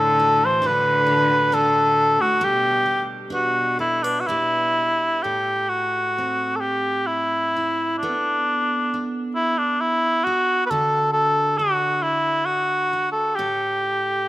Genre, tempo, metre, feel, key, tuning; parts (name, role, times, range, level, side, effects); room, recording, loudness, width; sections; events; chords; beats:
celtic folk, Celtic slow air; 60-69 BPM; 3/4; rubato; A dorian; A4 = 439 Hz
warm cor anglais; melody; 0.0-14.3 s; D4 to C5; -19 LUFS; equal
rich cello; second line; 0.0-5.2 s; A2 to E3; -27 LUFS; left 3 dB
picked steel-string acoustic guitar; accompaniment; 0.0-14.3 s; A2 to B4; -30 LUFS; right 2 dB
light reverb, small room ambience; rough home demo mix; -18 LUFS; side -16 dB against mid
0.0-5.2 A section; 5.2-14.3 B section
0.0 D/A; 2.4 G; 5.2 Am; 8.0 Bm7; 10.7 D; 13.4 A7(no3)
0.64 1.52 | 2.41 3.31 4.27 | 5.24 6.18 7.10 | 8.03 8.94 9.83 | 10.73 11.61 12.48 | 13.38